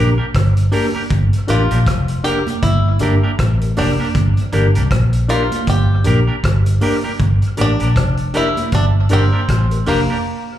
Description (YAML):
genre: roots reggae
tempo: 79 BPM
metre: 4/4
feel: swing 59% on 16ths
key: G dorian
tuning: A4 = 441 Hz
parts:
  - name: bluegrass banjo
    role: melody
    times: 0.0-10.6 s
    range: Bb3 to G4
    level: -22 LUFS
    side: left 1 dB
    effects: tape echo, plate reverb, slapback echo
  - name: clean electric guitar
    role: accompaniment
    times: 0.0-10.2 s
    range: Bb3 to Bb4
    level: -25 LUFS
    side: right 3 dB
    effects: tape echo, plate reverb, slapback echo
  - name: reed electric piano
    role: stabs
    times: 0.0-10.0 s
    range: D4 to Bb4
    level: -23 LUFS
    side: left 3 dB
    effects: overdrive, fast tremolo, plate reverb, slapback echo
  - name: vintage muted fingered electric bass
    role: bass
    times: 0.0-10.1 s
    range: F1 to C2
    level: -15 LUFS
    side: equal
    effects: none
  - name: vintage drum kit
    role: drums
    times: 0.3-10.1 s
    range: hi-hat, kick drum, rim click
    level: -22 LUFS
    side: equal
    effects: dub echo
  - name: congas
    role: percussion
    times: 0.7-10.2 s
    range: none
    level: -26 LUFS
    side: right 10 dB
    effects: slapback echo
room: light reverb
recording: live gig heard through the venue's PA, club reverb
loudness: -13 LUFS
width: side -12 dB against mid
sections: 0.0-10.6 A section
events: break 10.2-10.6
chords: 0.0 Gm